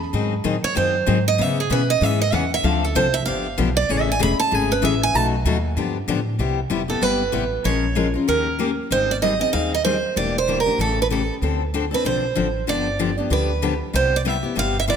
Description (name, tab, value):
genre	acoustic string swing (jazz manouche)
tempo	191 BPM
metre	4/4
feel	swing 58% on 8ths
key	unclear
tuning	A4 = 440 Hz
part	upright bass	bass	0.0-15.0 s	E1 to C#3	-24 LUFS	equal	none
part	picked steel-string acoustic guitar	accompaniment	0.1-15.0 s	B2 to Bb4	-23 LUFS	left 6 dB	none
part	picked steel-string acoustic guitar	melody	0.6-15.0 s	G#4 to B5	-22 LUFS	right 5 dB	tape echo
room	moderate scoring stage reverb, RT60 1.9 s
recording	close, detailed microphones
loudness	-18 LUFS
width	side -7 dB against mid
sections	0.0-6.4 A section; 6.4-15.0 B section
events	steel-string acoustic guitar solo 0.0-6.4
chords	0.1 G#7b9; 1.4 C#m7; 2.6 Dm7; 3.3 G7; 3.9 Amaj7; 5.1 B7; 5.8 G7; 6.4 Cmaj7; 7.6 Bbm7; 8.3 Eb7; 8.9 Abmaj7; 10.2 Em7b5; 10.8 A7; 11.4 Dm7; 12.7 G7; 13.9 Cmaj7